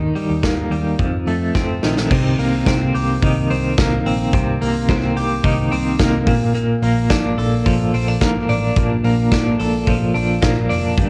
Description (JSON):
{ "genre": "jangly indie pop", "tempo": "108 BPM", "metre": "4/4", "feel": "straight", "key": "Bb major", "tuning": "A4 = 440 Hz", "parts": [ { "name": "twelve-string electric guitar", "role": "arpeggios", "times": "0.0-11.1 s", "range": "F2 to A4", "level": "-20 LUFS", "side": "equal", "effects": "tremolo, cassette tape" }, { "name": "vintage muted picked electric bass", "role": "bass", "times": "0.0-11.1 s", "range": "F1 to F2", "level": "-25 LUFS", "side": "equal", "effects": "none" }, { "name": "big rock drum kit", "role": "drums", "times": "0.2-11.1 s", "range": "crash cymbal, hi-hat, kick drum, snare drum", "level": "-23 LUFS", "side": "equal", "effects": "cassette tape" } ], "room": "light reverb", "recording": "home recording on cassette", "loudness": "-18 LUFS", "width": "mono", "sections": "0.0-2.1 A section; 2.1-11.1 B section", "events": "drum fill 1.6-2.1", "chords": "0.0 Eb; 1.0 F7; 2.1 Cm7; 6.3 Bbmaj7", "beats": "0.44 1.00 1.55 | 2.11 2.67 3.22 3.78 | 4.33 4.88 5.44 5.99 | 6.55 7.10 7.66 8.21 | 8.76 9.32 9.87 10.42 | 10.98" }